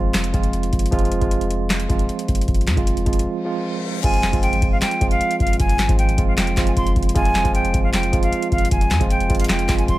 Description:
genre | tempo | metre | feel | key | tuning
hip hop, trap | 154 BPM | 4/4 | half-time | F minor | A4 = 440 Hz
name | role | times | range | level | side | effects
tine electric piano | accompaniment | 0.0-10.0 s | F3 to F4 | -23 LUFS | right 4 dB | auto-pan
warm 808-style bass | bass | 0.0-10.0 s | F1 to F2 | -22 LUFS | equal | none
booming analog drum machine | drums | 0.1-10.0 s | crash cymbal, handclaps, hi-hat, kick drum, snare drum | -20 LUFS | equal | none
reverse cymbal | sound effects | 3.4-4.0 s | none | -32 LUFS | left 8 dB | none
breathy silver concert flute | melody | 4.0-10.0 s | F5 to C6 | -23 LUFS | equal | ping-pong delay
room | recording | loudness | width
little or no reverb | none | -17 LUFS | side -16 dB against mid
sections
0.0-4.0 A section; 4.0-10.0 B section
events
break 3.3-4.0; reverse cymbal 3.4-4.0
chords
0.0 Fm

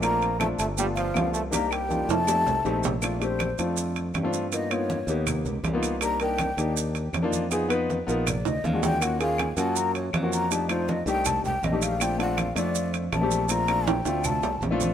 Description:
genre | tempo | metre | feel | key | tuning
Afro-Cuban jazz | 160 BPM | 4/4 | straight | Bb major | A4 = 438 Hz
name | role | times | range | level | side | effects
breathy mellow jazz flute | melody | 0.0-14.6 s | C5 to Bb5 | -29 LUFS | left 2 dB | none
brilliant trombone | second line | 0.0-2.8 s | F3 to Bb3 | -32 LUFS | right 5 dB | none
warm concert grand piano | accompaniment | 0.0-14.9 s | Ab3 to Cb5 | -28 LUFS | left 3 dB | none
modern bright fingered electric bass | bass | 0.0-14.9 s | G1 to G2 | -30 LUFS | right 1 dB | none
claves | percussion | 0.0-14.4 s | none | -38 LUFS | left 8 dB | none
congas | percussion | 0.0-14.9 s | none | -32 LUFS | right 1 dB | none
maracas | percussion | 0.0-14.9 s | none | -34 LUFS | right 9 dB | none
timbales | percussion | 0.0-14.9 s | none | -31 LUFS | right 8 dB | none
room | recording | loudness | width
light reverb | minimal, uncompressed stereo recording | -23 LUFS | side -9 dB against mid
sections
0.0-3.0 A section; 3.0-14.9 B section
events
drum fill 1.5-3.0, 8.5-9.0, 13.9-14.9; flute solo 3.0-14.9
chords
0.0 Bbmaj7; 0.8 G7; 1.5 Cm7; 2.3 F7; 3.0 Bbmaj9; 4.5 G7alt; 6.0 Cm9; 7.5 Fm7b5; 8.3 Bb7b13; 9.0 Ebm9; 10.5 F13; 12.0 Bbmaj9

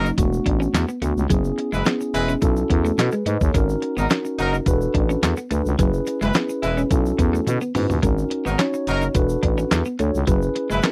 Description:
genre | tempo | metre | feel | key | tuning
early-eighties boogie funk | 107 BPM | 4/4 | straight | unclear | A4 = 440 Hz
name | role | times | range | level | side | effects
clear horn section | second line | 0.0-10.8 s | F#3 to B4 | -26 LUFS | equal | none
mellow tine electric piano | accompaniment | 0.0-10.9 s | F#3 to D#5 | -26 LUFS | equal | none
clean electric guitar | riff | 0.0-10.9 s | F#3 to D#4 | -29 LUFS | equal | lush chorus
growling FM bass | bass | 0.0-10.8 s | E1 to B2 | -25 LUFS | equal | none
egg shaker | percussion | 0.1-10.9 s | none | -46 LUFS | equal | none
clean 12-bit digital drum machine | drums | 0.2-10.9 s | handclaps, hi-hat, kick drum, snare drum, toms | -23 LUFS | equal | none
room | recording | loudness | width
little or no reverb | dry, close 1970s-style studio recording | -21 LUFS | mono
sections
0.0-10.9 A section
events
drum fill 7.5-8.0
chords
0.2 E9sus4; 1.3 F#9sus4; 2.4 B9sus4; 3.5 G#9sus4; 4.7 E9sus4; 5.8 F#9sus4; 6.9 B9sus4; 8.0 G#9sus4; 9.2 E9sus4; 10.3 F#9sus4

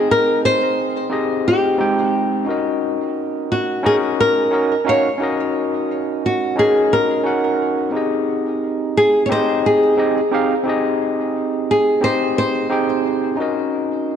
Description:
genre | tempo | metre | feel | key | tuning
chillout | 88 BPM | 4/4 | straight | unclear | A4 = 440 Hz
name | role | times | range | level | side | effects
flamenco guitar | melody | 0.0-13.4 s | Gb4 to Db5 | -18 LUFS | equal | tape echo
overdriven tine electric piano | accompaniment | 0.0-14.2 s | Ab3 to G5 | -19 LUFS | moving between left 5 dB and right 5 dB | auto-pan, tape echo
room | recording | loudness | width
moderate lush hall reverb, RT60 2.9 s | none | -16 LUFS | side -8 dB against mid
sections
0.0-14.2 A section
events
none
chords
0.0 Abmaj7; 2.8 Ebm7

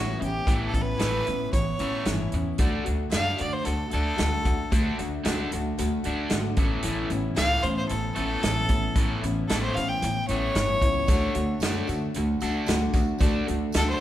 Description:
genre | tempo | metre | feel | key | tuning
folk rock and heartland rock | 113 BPM | 4/4 | straight | D major | A4 = 440 Hz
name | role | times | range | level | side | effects
bright fiddle | melody | 0.0-14.0 s | F#4 to G5 | -28 LUFS | equal | none
picked steel-string acoustic guitar | accompaniment | 0.0-14.0 s | A2 to F#4 | -32 LUFS | left 5 dB | none
biting overdriven guitar | riff | 0.0-14.0 s | A2 to D4 | -31 LUFS | right 2 dB | none
upright bass | bass | 0.0-13.9 s | G1 to D3 | -29 LUFS | equal | none
natural country drum kit | drums | 0.2-13.9 s | hi-hat, kick drum, snare drum | -27 LUFS | equal | none
warm upright piano | accompaniment | 11.1-14.0 s | D4 to A4 | -41 LUFS | right 2 dB | none
tambourine | percussion | 11.1-14.0 s | none | -44 LUFS | right 4 dB | none
room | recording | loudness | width
moderate recital hall reverb, RT60 1.3 s | recorded in a church or concert hall | -23 LUFS | side -13 dB against mid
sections
0.0-2.6 A section; 2.6-14.0 B section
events
fiddle solo 2.6-14.0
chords
0.0 Aadd9; 2.6 D; 6.6 Aadd9; 11.1 D

